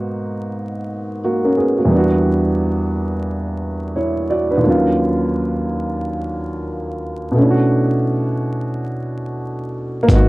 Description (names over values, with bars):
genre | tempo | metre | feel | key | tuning
lo-fi hip hop | 88 BPM | 4/4 | swing 60% on 16ths | unclear | A4 = 440 Hz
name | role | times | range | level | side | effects
dark upright piano | accompaniment | 0.0-10.3 s | D#2 to D5 | -17 LUFS | right 1 dB | cassette tape, low-pass filter
fat analog bass | bass | 10.1-10.3 s | G#1 | -13 LUFS | equal | none
dusty soul sampler-style drum kit | drums | 10.1-10.3 s | hi-hat, kick drum | -12 LUFS | equal | none
room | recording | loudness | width
moderate small room reverb, RT60 0.5 s | dark, warm production, vinyl crackle | -17 LUFS | side -20 dB against mid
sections
0.0-10.1 A section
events
none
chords
0.0 G#m9; 1.9 Em9; 4.6 D#m9; 7.4 Bm9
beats
0.54 1.23 | 1.91 2.59 3.27 3.95 | 4.63 5.32 6.00 6.68 | 7.36 8.04 8.73 9.41 | 10.09